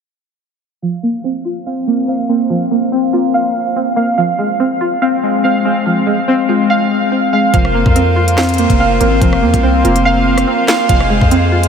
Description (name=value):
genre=hip hop, drill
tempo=143 BPM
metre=4/4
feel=half-time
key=unclear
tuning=A4 = 440 Hz
part: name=string-like resonator pluck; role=accompaniment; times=0.8-11.7 s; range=F3 to F5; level=-17 LUFS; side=right 2 dB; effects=chorus, low-pass filter
part: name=warbly lo-fi synth keys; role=arpeggios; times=0.8-11.7 s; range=Ab3 to F5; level=-14 LUFS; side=equal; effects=chorus, low-pass filter, tape echo
part: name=pedal harmonium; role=sustained chords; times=7.5-11.7 s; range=Ab3 to C5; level=-19 LUFS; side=equal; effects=none
part: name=distorted 808-style bass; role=bass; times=7.5-11.7 s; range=F1 to F2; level=-15 LUFS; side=equal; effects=distortion
part: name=drill drum kit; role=drums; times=7.5-11.7 s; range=handclaps, hi-hat, kick drum, rim click, snare drum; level=-16 LUFS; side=left 1 dB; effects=none
room=wet huge ambient reverb, RT60 7.7 s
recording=dreamy mix soaked in reverb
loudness=-11 LUFS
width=side -6 dB against mid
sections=0.8-7.5 A section; 7.5-11.7 B section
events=filter sweep 0.8-7.5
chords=0.8 Bbsus2/F; 4.2 Fm; 7.5 Bbsus2/F; 10.9 Fm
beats=| 0.82 1.24 1.66 2.08 | 2.50 2.92 3.34 3.76 | 4.18 4.60 5.02 5.44 | 5.86 6.28 6.70 7.12 | 7.54 7.96 8.38 8.79 | 9.21 9.63 10.05 10.47 | 10.89 11.31